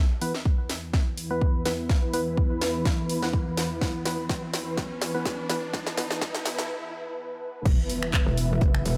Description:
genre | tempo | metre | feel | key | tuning
bass house | 125 BPM | 4/4 | swing 54% on 16ths | unclear | A4 = 441 Hz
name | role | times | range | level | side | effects
sweeping resonant pad | sustained chords | 0.0-9.0 s | E2 to E5 | -35 LUFS | equal | chorus, sidechain pumping
riser and impact | sound effects | 0.1-9.0 s | none | -42 LUFS | equal | none
ethereal airy pad | texture | 0.7-6.7 s | E4 to B5 | -40 LUFS | equal | ensemble chorus, built-in reverb, sidechain pumping
percussive organ stab | stabs | 0.2-6.0 s | E3 to B4 | -35 LUFS | equal | chorus, sidechain pumping, delay
house drum kit | drums | 0.2-9.0 s | crash cymbal, finger snaps, handclaps, hi-hat, snare drum | -34 LUFS | equal | high-pass filter on snare, small room ambience, high-pass filter on hats, high-pass filter on cymbals
electronic kick drum | drums | 0.5-8.7 s | none | -26 LUFS | equal | small room ambience
metallic wobble bass | bass | 7.7-9.0 s | E1 to F#1 | -28 LUFS | equal | distortion, chorus, tube saturation, sidechain pumping
deep reggae drum kit | drums | 7.7-9.0 s | hi-hat, snare drum | -47 LUFS | equal | none
room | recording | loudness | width
light reverb | high-pass filter | -27 LUFS | mono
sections
0.0-7.7 A section; 7.7-9.0 B section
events
build-up 0.0-7.7; drum fill 0.0-6.7; riser 0.1-6.7; filter sweep on synth stab 0.0-7.7; filter sweep on analog synth pad 0.0-7.7; filter sweep 0.0-7.7; break 6.7-7.7; drop 7.7-9.0; impact 7.7-9.0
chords
0.0 E5

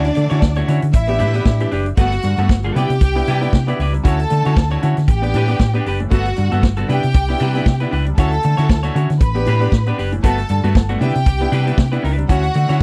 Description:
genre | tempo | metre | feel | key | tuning
disco | 116 BPM | 4/4 | swing 56% on 16ths | D major | A4 = 441 Hz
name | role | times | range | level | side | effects
clear symphonic string section | second line | 0.0-12.8 s | D4 to B5 | -25 LUFS | equal | none
bright baby grand piano | accompaniment | 0.0-12.8 s | G2 to G4 | -26 LUFS | equal | none
electric guitar at the edge of break-up | accompaniment | 0.0-12.8 s | A3 to D5 | -28 LUFS | equal | none
hollow-body short-scale fingered electric bass | bass | 0.0-12.8 s | F#1 to D3 | -20 LUFS | equal | none
vintage drum kit | drums | 0.0-12.8 s | hi-hat, kick drum, snare drum | -16 LUFS | equal | none
room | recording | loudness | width
little or no reverb | dry, close 1970s-style studio recording | -17 LUFS | mono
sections
0.0-12.8 A section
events
none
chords
0.0 Dmaj9; 0.9 A9sus4; 2.0 Gmaj9; 2.8 Cmaj9; 4.0 Dmaj9; 5.1 A9sus4; 6.1 Gmaj9; 6.9 Cmaj9; 8.2 Dmaj9; 9.2 A9sus4; 10.2 Gmaj9; 11.0 Cmaj9; 12.3 Dmaj9

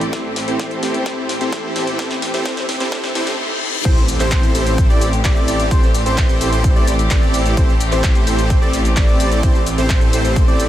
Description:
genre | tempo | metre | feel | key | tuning
EDM, festival progressive house | 129 BPM | 4/4 | straight | A minor | A4 = 439 Hz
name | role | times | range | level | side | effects
rich studio string section | sustained chords | 0.0-10.7 s | E3 to G4 | -25 LUFS | equal | sidechain pumping
supersaw chords | riff | 0.0-10.6 s | C4 to D5 | -21 LUFS | right 1 dB | cassette tape, sidechain pumping, low-pass filter, tape echo
wide detuned saw bass | bass | 0.0-10.7 s | A1 | -22 LUFS | equal | chorus, sidechain pumping
big-room dance drum kit | drums | 0.0-10.7 s | crash cymbal, handclaps, hi-hat, shaker, snare drum | -25 LUFS | left 1 dB | high-pass filter on hats, high-pass filter on snare, high-pass filter on cymbals, high-pass filter on perc
riser, reverse cymbal and impact | sound effects | 1.4-5.7 s | none | -28 LUFS | left 2 dB | none
electronic kick drum | drums | 0.1-10.5 s | none | -15 LUFS | equal | high-pass filter on kick
wide unison lead | arpeggios | 3.9-10.6 s | C5 to D5 | -24 LUFS | left 1 dB | analog chorus, cassette tape, sidechain pumping, tape echo
room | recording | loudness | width
light reverb, digital ambience | high-pass filter | -14 LUFS | side -12 dB against mid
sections
0.0-3.9 A section; 3.9-10.7 B section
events
build-up 0.0-3.9; drum fill 0.0-3.4; filter sweep on supersaw synth 0.0-3.9; filter sweep 0.0-3.9; reverse cymbal 2.9-3.9; drop 3.9-10.7; impact 3.9-5.7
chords
0.0 Am7

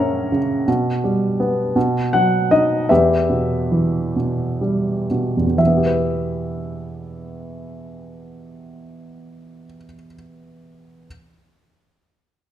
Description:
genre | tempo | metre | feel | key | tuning
classical, lyrical solo piano | 39-57 BPM (dotted quarters) | 6/8 | rubato | E minor | A4 = 440 Hz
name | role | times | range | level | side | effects
warm grand piano | solo | 0.0-11.1 s | E2 to A#5 | -17 LUFS | equal | none
room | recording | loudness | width
moderate recital hall reverb, RT60 1.4 s | minimal, uncompressed stereo recording | -16 LUFS | side -11 dB against mid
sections
0.0-5.6 A section; 5.6-8.6 B section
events
slowing down 0.7-5.6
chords
0.0 F#7; 0.7 G/B; 1.8 B; 2.9 Em

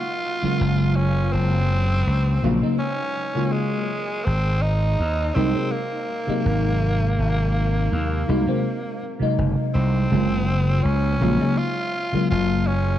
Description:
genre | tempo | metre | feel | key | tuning
vaporwave | 82 BPM | 4/4 | straight | Gb lydian | A4 = 440 Hz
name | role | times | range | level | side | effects
breathy tenor saxophone | melody | 0.0-13.0 s | Ab3 to F4 | -26 LUFS | right 1 dB | tape echo
FM electric piano with soft pad layer | accompaniment | 0.4-13.0 s | C3 to F4 | -23 LUFS | left 1 dB | phaser, lush chorus, vintage 12-bit sampler grit
gritty slap bass | bass | 0.4-13.0 s | Gb1 to Eb2 | -21 LUFS | equal | overdrive
room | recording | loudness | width
light reverb | dark, warm production, cassette tape | -19 LUFS | side -12 dB against mid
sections
0.0-10.1 A section; 10.1-13.0 B section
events
none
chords
0.0 Gbmaj7; 3.9 Ab9; 10.1 Gbmaj7

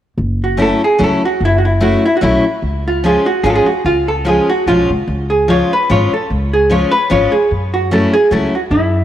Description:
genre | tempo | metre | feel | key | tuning
musette waltz | 148 BPM | 3/4 | swing 53% on 8ths | F# minor | A4 = 441 Hz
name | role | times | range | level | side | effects
upright bass | bass | 0.2-9.0 s | F#1 to F#2 | -18 LUFS | equal | none
archtop guitar, miked and amplified | melody | 0.4-9.0 s | E4 to C#5 | -14 LUFS | right 1 dB | cassette tape
picked steel-string acoustic guitar | accompaniment | 0.6-8.5 s | E#3 to E#4 | -16 LUFS | left 2 dB | cassette tape
room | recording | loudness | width
moderate lush hall reverb, RT60 2.8 s | home recording on cassette | -11 LUFS | side -11 dB against mid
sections
0.2-9.0 A section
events
none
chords
0.2 F#m7; 2.6 C#; 7.5 F#m7

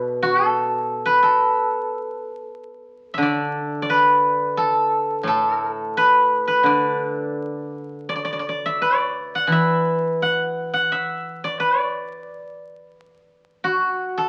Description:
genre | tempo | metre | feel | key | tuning
chinese traditional, Chinese solo plucked strings | 88 BPM | 4/4 | rubato | D gong mode | A4 = 439 Hz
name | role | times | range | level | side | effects
steel-string zither | solo | 0.0-14.3 s | A2 to F#5 | -21 LUFS | equal | none
room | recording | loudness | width
moderate large studio reverb, RT60 0.9 s | very old 78 rpm record, vinyl crackle | -21 LUFS | mono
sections
0.0-14.3 A section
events
none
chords
none

